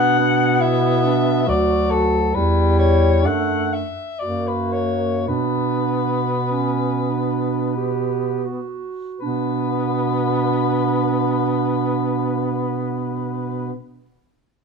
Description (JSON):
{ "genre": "classical, lyrical piece for single-reed quartet", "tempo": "40-74 BPM", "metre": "3/4", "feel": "rubato", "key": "B minor", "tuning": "A4 = 441 Hz", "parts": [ { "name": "warm soprano saxophone", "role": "melody", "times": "0.0-13.7 s", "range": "A4 to F#5", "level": "-24 LUFS", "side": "left 6 dB", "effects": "none" }, { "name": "warm clarinet", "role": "second line", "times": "0.0-13.7 s", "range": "C#4 to G4", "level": "-24 LUFS", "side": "right 7 dB", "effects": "none" }, { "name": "mellow tenor saxophone", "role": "accompaniment", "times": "0.0-13.7 s", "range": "F#3 to B3", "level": "-24 LUFS", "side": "left 2 dB", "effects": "none" }, { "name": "mellow bass clarinet", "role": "bass", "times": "0.0-13.7 s", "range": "D2 to B2", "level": "-23 LUFS", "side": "right 2 dB", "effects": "none" } ], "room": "light reverb", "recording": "minimal, uncompressed stereo recording", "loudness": "-18 LUFS", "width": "side -5 dB against mid", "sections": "0.0-9.2 A section; 9.2-13.5 B section", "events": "slowing down 1.0-9.2", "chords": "0.0 Bm; 2.3 C#dim/E; 3.3 Dadd9/F#; 4.2 F#; 5.3 Bm" }